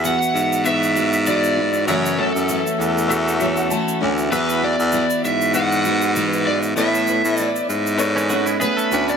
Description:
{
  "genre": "acoustic pop",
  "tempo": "98 BPM",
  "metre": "4/4",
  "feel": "swing 55% on 16ths",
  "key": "E mixolydian",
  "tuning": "A4 = 441 Hz",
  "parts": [
    { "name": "overdriven slide guitar", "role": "melody", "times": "0.0-9.2 s", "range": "A4 to F#5", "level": "-22 LUFS", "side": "right 1 dB", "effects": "tape echo" },
    { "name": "bright upright piano", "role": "accompaniment", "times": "0.0-9.2 s", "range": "A3 to A5", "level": "-27 LUFS", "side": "left 4 dB", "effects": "none" },
    { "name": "picked steel-string acoustic guitar", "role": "accompaniment", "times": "0.0-9.2 s", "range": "F#2 to B4", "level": "-23 LUFS", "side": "equal", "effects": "double-tracked left and right" },
    { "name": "bright baritone saxophone", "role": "bass", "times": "0.0-9.2 s", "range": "D2 to A2", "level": "-21 LUFS", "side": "equal", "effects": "none" },
    { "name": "egg shaker", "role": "percussion", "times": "0.0-9.2 s", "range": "none", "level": "-31 LUFS", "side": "right 6 dB", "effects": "none" },
    { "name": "direct-recorded clean electric guitar", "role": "second line", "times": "8.2-9.2 s", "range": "E3 to A4", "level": "-24 LUFS", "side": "right 4 dB", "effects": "tape echo" }
  ],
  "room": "moderate studio reverb, RT60 0.6 s",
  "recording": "none",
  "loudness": "-16 LUFS",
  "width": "side -7 dB against mid",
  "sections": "0.0-9.2 A section",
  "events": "upright piano fill 3.1-4.3",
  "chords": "0.0 Esus2; 1.9 F#m7; 4.3 Esus2; 6.8 Aadd9"
}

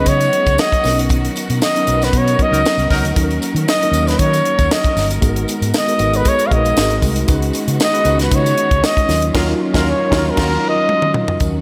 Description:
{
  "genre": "polished 1980s jazz-funk pop",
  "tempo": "116 BPM",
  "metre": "4/4",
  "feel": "swing 54% on 16ths",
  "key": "Eb minor",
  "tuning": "A4 = 443 Hz",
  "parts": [
    { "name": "breathy flugelhorn", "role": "melody", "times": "0.0-11.2 s", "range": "Bb4 to F5", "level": "-20 LUFS", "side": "equal", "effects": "slapback echo" },
    { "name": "mellow tine electric piano", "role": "accompaniment", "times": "0.0-11.6 s", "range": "Gb3 to Db5", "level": "-23 LUFS", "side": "equal", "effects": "analog chorus, slapback echo" },
    { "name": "warm studio string section", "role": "sustained chords", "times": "0.0-11.6 s", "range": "Eb3 to A#4", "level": "-30 LUFS", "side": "equal", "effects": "none" },
    { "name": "vintage muted fingered electric bass", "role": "bass", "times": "0.0-11.6 s", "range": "G1 to Eb3", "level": "-22 LUFS", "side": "equal", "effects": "none" },
    { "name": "tight funk drum kit", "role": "drums", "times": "0.1-11.5 s", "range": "crash cymbal, hi-hat, kick drum, snare drum, toms", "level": "-21 LUFS", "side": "equal", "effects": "none" },
    { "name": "tambourine", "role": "percussion", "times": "0.1-11.5 s", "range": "none", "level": "-34 LUFS", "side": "equal", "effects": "none" },
    { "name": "warm horn section", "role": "second line", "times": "2.5-3.1, 9.3-10.5 s", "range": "F#3 to A#4", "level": "-28 LUFS", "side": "equal", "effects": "slapback echo" }
  ],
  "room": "moderate lush hall reverb, RT60 2.0 s, studio ambience",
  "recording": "big arena sound",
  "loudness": "-15 LUFS",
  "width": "mono",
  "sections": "0.0-11.4 A section",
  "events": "band accent 1.1-3.2, 9.3-11.4; drum fill 10.9-11.4",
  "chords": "0.0 Db9sus4; 0.8 Bmaj9; 3.2 Ebm7; 5.2 Abm9; 6.8 Ab9; 7.3 Db9sus4; 9.1 Ebm9"
}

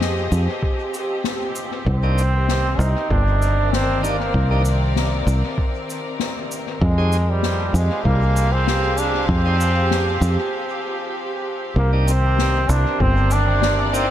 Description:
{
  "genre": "ambient dub",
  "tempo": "97 BPM",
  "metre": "4/4",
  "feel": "swing 54% on 16ths",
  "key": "C minor",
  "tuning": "A4 = 441 Hz",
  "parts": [
    { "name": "bright symphonic string section", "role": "sustained chords", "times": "0.0-14.1 s", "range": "C3 to F5", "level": "-26 LUFS", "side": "equal", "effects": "none" },
    { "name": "fingered electric bass", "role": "bass", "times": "0.0-14.1 s", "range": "G1 to F2", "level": "-18 LUFS", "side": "equal", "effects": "tube saturation" },
    { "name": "snare drum and cabasa", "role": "drums", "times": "0.0-14.1 s", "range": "none", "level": "-29 LUFS", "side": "left 6 dB", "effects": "dub echo" },
    { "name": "electronic kick drum", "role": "drums", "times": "0.6-13.1 s", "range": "none", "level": "-23 LUFS", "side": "equal", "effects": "none" },
    { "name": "brilliant trombone", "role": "melody", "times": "1.9-14.1 s", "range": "G3 to Eb4", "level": "-23 LUFS", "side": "right 1 dB", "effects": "dub echo" },
    { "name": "bright tonewheel organ", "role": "stabs", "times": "2.0-14.1 s", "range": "Bb3 to C5", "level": "-33 LUFS", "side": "equal", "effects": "none" },
    { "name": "Celtic harp", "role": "arpeggios", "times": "11.8-14.1 s", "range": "Bb4 to D5", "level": "-30 LUFS", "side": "right 3 dB", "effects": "analog delay" }
  ],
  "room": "light reverb, studio reverb",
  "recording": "echo-heavy mix",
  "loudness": "-17 LUFS",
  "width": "side -11 dB against mid",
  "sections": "0.0-11.8 A section; 11.8-14.1 B section",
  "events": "break 10.5-11.8",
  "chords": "0.0 Fm7; 1.9 Cm7; 6.8 Fm7; 11.8 Cm7"
}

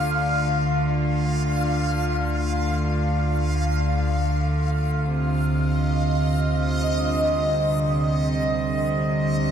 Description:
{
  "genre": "dark ambient drone",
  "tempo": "free time",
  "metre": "none",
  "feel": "none",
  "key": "unclear",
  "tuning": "A4 = 442 Hz",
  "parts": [
    { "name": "clear studio cello section", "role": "sustained chords", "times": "0.0-9.5 s", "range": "C3 to Eb5", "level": "-28 LUFS", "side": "right 1 dB", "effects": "none" },
    { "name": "analog drone", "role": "drone", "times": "0.0-9.5 s", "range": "D2 to D3", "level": "-22 LUFS", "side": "equal", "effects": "chorus" },
    { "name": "backwards swelling texture", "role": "texture", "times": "0.0-9.5 s", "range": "Eb5 to F5", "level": "-26 LUFS", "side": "equal", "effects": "built-in reverb" }
  ],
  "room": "wet cathedral reverb, RT60 4.8 s",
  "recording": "in a vast, echoing space",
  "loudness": "-20 LUFS",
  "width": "side -8 dB against mid",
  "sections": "0.0-9.5 A section",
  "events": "filter sweep on synth drone 0.0-9.5",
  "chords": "0.0 Dm; 5.1 Cm"
}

